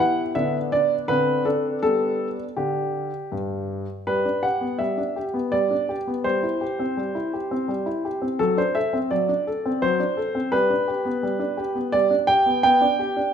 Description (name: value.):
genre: classical-period piano sonatina.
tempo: 83 BPM.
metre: 3/4.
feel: straight.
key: G major.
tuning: A4 = 440 Hz.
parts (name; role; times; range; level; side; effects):
clear grand piano; solo; 0.0-13.3 s; G2 to G5; -20 LUFS; equal; none.
room: moderate recital hall reverb, RT60 1.7 s.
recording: minimal, uncompressed stereo recording.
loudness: -21 LUFS.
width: side -8 dB against mid.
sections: 0.0-4.1 A section; 4.1-13.3 B section.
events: none.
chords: 0.4 Bmadd11/D; 1.1 D5; 1.8 G; 6.3 C/G; 8.4 D7/F#; 10.5 G; 12.6 G/B.